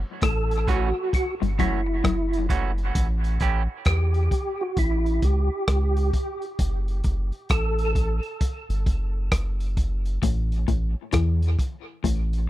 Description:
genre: dub reggae.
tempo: 66 BPM.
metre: 4/4.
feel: swing 62% on 16ths.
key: F# phrygian.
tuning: A4 = 440 Hz.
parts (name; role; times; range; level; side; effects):
soft dub sub bass; bass; 0.0-12.5 s; F#1 to E2; -24 LUFS; equal; none.
percussive tonewheel organ; melody; 0.2-7.9 s; E4 to A4; -28 LUFS; right 1 dB; chorus vibrato, fast rotary speaker, dub echo.
electric guitar through a small old amp; riff; 0.2-2.3, 10.2-12.3 s; F#2 to E3; -30 LUFS; left 8 dB; dub echo.
crunchy breakbeat drum kit; drums; 0.2-12.5 s; hi-hat, kick drum, rim click; -24 LUFS; equal; none.
semi-hollow electric guitar; accompaniment; 0.7-3.6 s; E3 to G4; -31 LUFS; right 7 dB; high-pass filter, dub echo.
room: little or no reverb.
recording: dry, close 1970s-style studio recording.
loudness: -22 LUFS.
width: side -15 dB against mid.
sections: 0.0-12.5 A section.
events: none.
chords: 0.0 F#m7; 3.0 A7; 6.6 F#m; 10.2 A5.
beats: 0.22 1.13 2.04 | 2.95 3.86 4.77 5.68 | 6.59 7.50 8.41 9.32 | 10.22 11.13 12.04.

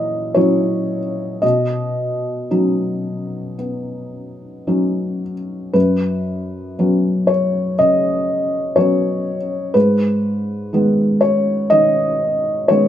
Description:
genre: neoclassical minimalist piano.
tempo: 55-62 BPM.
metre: 4/4.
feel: rubato.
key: unclear.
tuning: A4 = 440 Hz.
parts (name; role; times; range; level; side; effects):
felt-muted upright piano; solo; 0.0-12.9 s; F#2 to E5; -16 LUFS; equal; none.
room: light reverb.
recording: band playing live in one room.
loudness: -16 LUFS.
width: side -10 dB against mid.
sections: 0.0-12.9 A section.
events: none.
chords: 0.0 F#7/A#; 1.4 Badd9; 5.7 F#sus4; 9.7 G#m.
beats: 0.37 | 1.43 2.51 3.59 4.67 | 5.75 6.79 7.79 8.77 | 9.75 10.73 11.71 12.68.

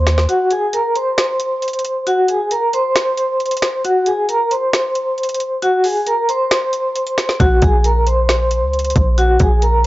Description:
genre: hip hop, trap.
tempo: 135 BPM.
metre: 4/4.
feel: half-time.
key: unclear.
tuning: A4 = 440 Hz.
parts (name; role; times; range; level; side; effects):
vibraphone with medium mallets; melody; 0.0-9.9 s; Gb4 to C6; -16 LUFS; equal; none.
warm 808-style bass; bass; 0.0-0.3, 7.4-9.9 s; Bb1 to Eb2; -15 LUFS; equal; none.
trap drum kit; drums; 0.1-9.9 s; finger snaps, hi-hat, kick drum, snare drum; -19 LUFS; equal; none.
room: little or no reverb.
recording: dry, gritty hardware recording, nothing above 7.7 kHz.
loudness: -14 LUFS.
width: side -17 dB against mid.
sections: 0.0-9.9 A section.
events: break 0.3-7.4.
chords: 0.3 Ab9/Gb; 7.4 Bbm.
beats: | 0.29 0.73 1.18 1.62 | 2.07 2.51 2.96 3.40 | 3.85 4.29 4.73 5.18 | 5.62 6.07 6.51 6.96 | 7.40 7.84 8.29 8.73 | 9.18 9.62.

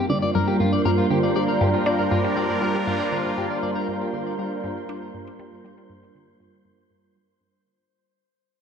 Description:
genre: ambient, sequencer-driven space music.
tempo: 119 BPM.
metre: 4/4.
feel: straight.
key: G minor.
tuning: A4 = 440 Hz.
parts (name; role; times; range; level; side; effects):
sweeping resonant pad; sustained chords; 0.0-7.9 s; G3 to Bb4; -23 LUFS; right 1 dB; chorus.
electric guitar at the edge of break-up; arpeggios; 0.0-3.9 s; F4 to D5; -28 LUFS; left 2 dB; auto-pan, ping-pong delay.
wind-like tuned noise texture; texture; 0.2-7.9 s; C5 to C6; -34 LUFS; left 1 dB; built-in reverb.
resonant blip pluck; riff; 0.1-7.8 s; G2 to D4; -26 LUFS; left 1 dB; phaser, cassette tape, ping-pong delay.
room: wet concert hall reverb, RT60 2.0 s.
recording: none.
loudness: -20 LUFS.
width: side -7 dB against mid.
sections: 0.0-7.9 A section.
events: fade-out on synth arpeggio sound 0.0-7.9; fade-out 0.0-7.9.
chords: 0.0 Gm7.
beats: 0.35 0.85 1.36 | 1.86 2.37 2.87 3.38 | 3.88 4.38 4.89 5.39 | 5.90 6.40 6.91 7.41.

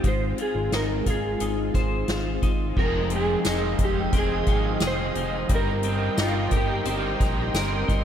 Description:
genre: dream pop.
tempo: 88 BPM.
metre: 4/4.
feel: straight.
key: unclear.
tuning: A4 = 440 Hz.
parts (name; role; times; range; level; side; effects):
mellow electric guitar; melody; 0.0-7.9 s; F4 to C5; -29 LUFS; right 2 dB; ensemble chorus, tape echo.
soft string machine; sustained chords; 0.0-8.0 s; Ab3 to C6; -32 LUFS; equal; ensemble chorus.
electric guitar at the edge of break-up; arpeggios; 0.0-8.0 s; F3 to C5; -30 LUFS; left 5 dB; analog chorus, tape echo.
fat analog bass; bass; 0.0-8.0 s; F1 to Bb1; -29 LUFS; equal; none.
soft-mallet drum kit; drums; 0.0-8.0 s; crash cymbal, hi-hat, kick drum, snare drum, tambourine; -26 LUFS; equal; none.
raw garage guitar; accompaniment; 2.8-8.0 s; F2 to Bb4; -31 LUFS; right 3 dB; overdrive, harmonic tremolo, lush chorus.
drifting glass-harmonics texture; texture; 3.8-7.3 s; Eb5 to G5; -38 LUFS; equal; chorus, built-in reverb, tape echo.
room: light reverb, small room reverb.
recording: none.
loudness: -22 LUFS.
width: side -9 dB against mid.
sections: 0.0-2.8 A section; 2.8-8.0 B section.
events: none.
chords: 0.0 Ab6; 2.8 Fm7; 5.5 Cm7/G.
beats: | 0.04 0.72 1.41 2.09 | 2.77 3.45 4.13 4.81 | 5.50 6.18 6.86 7.54.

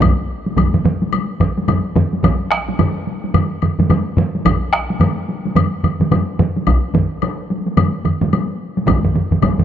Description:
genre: japanese traditional, taiko drum ensemble.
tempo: 108 BPM.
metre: 4/4.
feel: swing 60% on 16ths.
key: none.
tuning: none.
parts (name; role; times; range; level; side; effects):
solo taiko drums; percussion; 0.0-9.6 s; none; -18 LUFS; right 5 dB; none.
taiko ensemble; percussion; 0.0-9.6 s; none; -21 LUFS; left 1 dB; none.
taiko ensemble; percussion; 0.0-9.6 s; none; -19 LUFS; left 3 dB; none.
taiko ensemble; percussion; 0.0-9.6 s; none; -20 LUFS; equal; none.
woodblock; percussion; 0.0-9.6 s; none; -26 LUFS; left 12 dB; none.
room: light reverb.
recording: dry, close 1970s-style studio recording.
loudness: -15 LUFS.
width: side -10 dB against mid.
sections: 0.0-9.6 A section.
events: none.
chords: none.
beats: | 0.01 0.57 1.12 1.68 | 2.24 2.79 3.35 3.90 | 4.45 5.01 5.56 6.11 | 6.67 7.22 7.77 8.32 | 8.87 9.42.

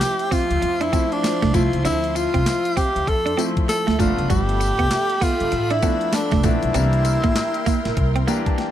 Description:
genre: R&B, new jack swing.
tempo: 98 BPM.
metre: 4/4.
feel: swing 61% on 16ths.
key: D dorian.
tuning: A4 = 439 Hz.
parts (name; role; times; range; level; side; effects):
breathy tenor saxophone; melody; 0.0-8.6 s; D4 to A4; -22 LUFS; equal; tape echo.
clear concert grand piano; accompaniment; 0.0-8.7 s; E3 to A5; -28 LUFS; left 4 dB; none.
phased analog pad; sustained chords; 0.0-8.7 s; F3 to C6; -30 LUFS; equal; phaser, chorus.
clean 12-bit digital drum machine; drums; 0.0-8.7 s; handclaps, hi-hat, kick drum, snare drum, tambourine; -24 LUFS; equal; none.
clean electric guitar; riff; 0.3-8.6 s; G3 to D4; -26 LUFS; right 6 dB; wide subtle chorus.
upright bass; bass; 0.3-8.2 s; F1 to F2; -23 LUFS; equal; none.
room: light reverb, small room ambience.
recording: none.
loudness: -18 LUFS.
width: side -11 dB against mid.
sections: 0.0-8.7 A section.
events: grand piano fill 8.0-8.7.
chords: 0.0 Dm9; 4.0 G9; 6.7 C7.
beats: 0.01 0.62 1.24 | 1.85 2.46 3.07 3.69 | 4.30 4.91 5.52 6.13 | 6.75 7.36 7.97 8.58.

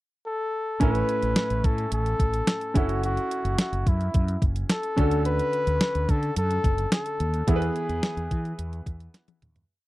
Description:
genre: 1980s-style pop.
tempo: 108 BPM.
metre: 4/4.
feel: straight.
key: A major.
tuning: A4 = 440 Hz.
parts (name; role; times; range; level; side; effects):
warm flugelhorn; melody; 0.3-9.1 s; E4 to B4; -28 LUFS; left 1 dB; slapback echo.
clear grand piano; accompaniment; 0.8-9.7 s; A2 to G#5; -30 LUFS; right 1 dB; none.
mellow fretless electric bass; bass; 0.8-9.6 s; F#1 to E3; -27 LUFS; equal; none.
clean 12-bit digital drum machine; drums; 0.8-9.7 s; hi-hat, kick drum, snare drum, toms; -24 LUFS; equal; none.
room: little or no reverb.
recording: dry, close 1970s-style studio recording.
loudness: -23 LUFS.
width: side -17 dB against mid.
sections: 0.0-0.8 pickup bar; 0.8-9.7 verse.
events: fade-out 7.5-9.7; drum fill 9.1-9.7.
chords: 0.0 N.C.; 0.8 Amaj7; 2.8 F#m7; 5.0 Dmaj7; 7.5 E.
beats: 0.25 | 0.81 1.36 1.92 2.48 | 3.03 3.59 4.14 4.70 | 5.25 5.81 6.37 6.92 | 7.48 8.03 8.59 9.14.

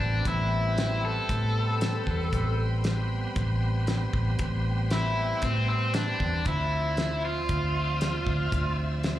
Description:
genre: straight-eighth soul blues.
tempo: 116 BPM.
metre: 4/4.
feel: swing 55% on 16ths.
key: A minor.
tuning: A4 = 439 Hz.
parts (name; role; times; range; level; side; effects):
overdriven electric guitar; melody; 0.0-8.8 s; C4 to A4; -30 LUFS; left 1 dB; spring reverb, plate reverb.
bright tonewheel organ; accompaniment; 0.0-9.2 s; F3 to E5; -36 LUFS; right 4 dB; slow rotary speaker, overdrive, plate reverb, slapback echo.
rich studio string section; sustained chords; 0.0-9.2 s; D5 to C6; -41 LUFS; left 3 dB; plate reverb.
vintage muted fingered electric bass; bass; 0.0-9.2 s; A1 to A2; -28 LUFS; equal; none.
cloth-damped thuddy drum kit; drums; 0.0-9.2 s; hi-hat, kick drum, snare drum; -31 LUFS; equal; none.
room: light reverb.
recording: live gig heard through the venue's PA, club reverb.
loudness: -25 LUFS.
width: side -13 dB against mid.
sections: 0.0-9.2 A section.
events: overdriven electric guitar solo 0.0-9.2.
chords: 0.0 Am9; 6.5 Dm9.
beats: | 0.26 0.78 1.30 1.81 | 2.33 2.85 3.37 3.88 | 4.40 4.92 5.43 5.95 | 6.47 6.99 7.50 8.02 | 8.54 9.05.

